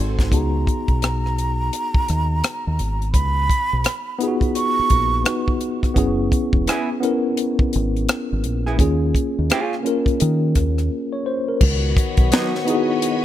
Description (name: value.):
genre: R&B, neo-soul.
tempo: 85 BPM.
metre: 4/4.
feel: swing 63% on 16ths.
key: unclear.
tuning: A4 = 440 Hz.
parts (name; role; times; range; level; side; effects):
tine electric piano; accompaniment; 0.0-13.2 s; A#3 to C#5; -23 LUFS; left 2 dB; overdrive, fast stereo tremolo.
string machine, violins; sustained chords; 0.0-0.3, 11.6-13.2 s; F#4 to B5; -31 LUFS; right 1 dB; ensemble chorus.
deep dub fingered electric bass; bass; 0.0-12.3 s; E1 to D#3; -21 LUFS; equal; none.
tight funk drum kit; drums; 0.2-13.2 s; crash cymbal, hi-hat, kick drum, rim click, snare drum; -19 LUFS; equal; none.
breathy concert flute; melody; 0.3-5.6 s; A#5 to C#6; -24 LUFS; right 3 dB; tape echo.
vintage hollow-body jazz guitar; second line; 6.7-12.5 s; F#3 to G#4; -26 LUFS; right 4 dB; none.
warm trombone section; stabs; 11.6-13.2 s; D#3 to F#4; -26 LUFS; left 8 dB; none.
room: small room ambience.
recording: none.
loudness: -17 LUFS.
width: side -12 dB against mid.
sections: 0.3-11.6 A section; 11.6-13.2 B section.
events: break 10.9-11.6.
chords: 0.3 C#9sus4 (rootless); 6.0 F#9sus4 (rootless); 8.8 D#9sus4; 11.6 C#9sus4.